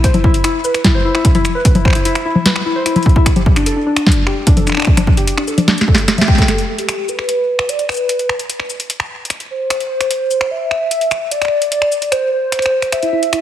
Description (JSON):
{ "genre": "IDM", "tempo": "149 BPM", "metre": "4/4", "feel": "straight", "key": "unclear", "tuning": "A4 = 440 Hz", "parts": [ { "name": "warbly dusty pluck", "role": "arpeggios", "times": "0.0-6.5, 12.9-13.4 s", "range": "D4 to G5", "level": "-18 LUFS", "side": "left 2 dB", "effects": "lush chorus, digital delay" }, { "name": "booming analog drum machine", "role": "drums", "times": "0.0-13.4 s", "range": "cabasa, congas, finger snaps, hi-hat, snare drum", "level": "-17 LUFS", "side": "left 1 dB", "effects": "small room ambience, digital delay" }, { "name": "electronic kick drum", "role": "drums", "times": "0.0-6.5 s", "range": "none", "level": "-12 LUFS", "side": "equal", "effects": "small room ambience" }, { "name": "warbly nostalgic lead", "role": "melody", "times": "6.5-13.4 s", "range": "G4 to E5", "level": "-16 LUFS", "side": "equal", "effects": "analog chorus, cassette tape, tape echo" } ], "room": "moderate lush hall reverb, RT60 1.7 s, digital ambience", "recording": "heavily compressed radio sound", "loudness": "-12 LUFS", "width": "side -11 dB against mid", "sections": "0.0-6.5 A section; 6.5-13.4 B section", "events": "drum fill 5.7-6.5; band accent 6.2", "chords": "0.0 N.C.; 3.3 Asus4; 6.5 N.C." }